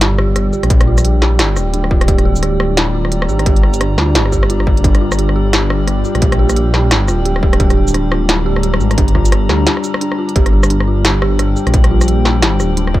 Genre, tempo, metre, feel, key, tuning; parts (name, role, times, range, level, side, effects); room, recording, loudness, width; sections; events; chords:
half-time drum and bass; 174 BPM; 4/4; swing 60% on 16ths, half-time; G minor; A4 = 441 Hz
dark analog pad; sustained chords; 0.0-13.0 s; G3 to Bb5; -21 LUFS; left 3 dB; chorus, sidechain pumping
dark detuned synth bell; arpeggios; 0.0-13.0 s; D4 to G4; -22 LUFS; right 2 dB; chorus, vintage 12-bit sampler grit, dub echo
dark detuned saw bass; bass; 0.0-13.0 s; D1 to D2; -14 LUFS; equal
industrial drum kit; drums; 0.0-12.9 s; hi-hat, rim click, shaker, snare drum; -18 LUFS; equal
impact; sound effects; 0.0-0.7 s; -27 LUFS; equal
metallic inharmonic drone; texture; 0.0-13.0 s; G4; -27 LUFS; right 6 dB; chorus, built-in reverb
electronic kick drum; drums; 0.7-13.0 s; -13 LUFS; equal; distortion
digital ambience; dark, warm production; -11 LUFS; side -15 dB against mid
0.0-13.0 A section
impact 0.0-0.7; break 9.7-10.4
0.0 G5